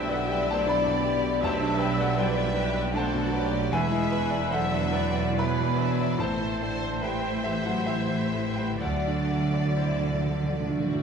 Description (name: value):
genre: classical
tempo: 60-80 BPM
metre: 3/4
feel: rubato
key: G major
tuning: A4 = 440 Hz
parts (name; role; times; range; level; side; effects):
- bright grand piano; melody; 0.0-11.0 s; B1 to B5; -29 LUFS; left 2 dB; none
- clear symphonic violin section; melody; 0.0-11.0 s; C5 to E5; -38 LUFS; left 3 dB; none
- mellow clarinet; second line; 0.0-11.0 s; C5 to F#5; -36 LUFS; left 2 dB; none
- mellow hollow silver concert flute; second line; 0.0-10.6 s; E5 to B5; -37 LUFS; right 1 dB; none
- rich symphonic violin section; second line; 0.0-11.0 s; B3 to B4; -37 LUFS; left 1 dB; none
- mellow bassoon; accompaniment; 0.0-11.0 s; D3 to G3; -38 LUFS; right 1 dB; none
- rich symphonic viola section; accompaniment; 0.0-11.0 s; G4 to E5; -35 LUFS; equal; none
- dark French horn section; sustained chords; 0.0-10.7 s; E3 to B3; -33 LUFS; left 4 dB; none
- rich symphonic cello section; bass; 0.0-11.0 s; E2 to D3; -34 LUFS; right 5 dB; none
- rich symphonic double bass section; bass; 0.0-11.0 s; E1 to D2; -32 LUFS; right 6 dB; none
- timpani; percussion; 8.8-11.0 s; D3; -32 LUFS; right 1 dB; none
room: wet recital hall reverb, RT60 1.4 s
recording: none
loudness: -24 LUFS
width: side -6 dB against mid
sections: 0.0-11.0 A section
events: timpani fill 8.8-11.0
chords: 0.0 G/B; 3.7 E7; 6.2 Am7; 8.8 D